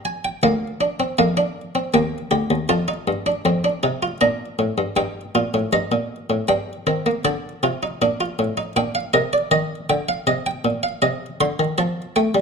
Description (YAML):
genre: classical, baroque-style 3-part fugue for harpsichord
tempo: 80 BPM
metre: 3/4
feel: straight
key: Eb major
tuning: A4 = 440 Hz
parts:
  - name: buff-stop harpsichord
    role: solo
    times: 0.0-12.4 s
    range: D2 to C6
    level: -19 LUFS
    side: equal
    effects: none
room: moderate large studio reverb, RT60 1.3 s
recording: minimal, uncompressed stereo recording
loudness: -19 LUFS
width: side -5 dB against mid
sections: 0.0-5.0 A section; 5.0-12.4 B section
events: none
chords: 0.4 Bb/D; 1.9 Eb; 2.7 F7; 4.2 Bb; 5.0 Eb/G; 6.5 Gmadd11; 7.3 Dm; 8.8 Gm7/Bb; 11.0 Cm; 11.8 F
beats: | 0.44 1.19 1.95 | 2.70 3.46 4.21 | 4.97 5.73 6.49 | 7.25 8.01 8.77 | 9.52 10.27 11.02 | 11.78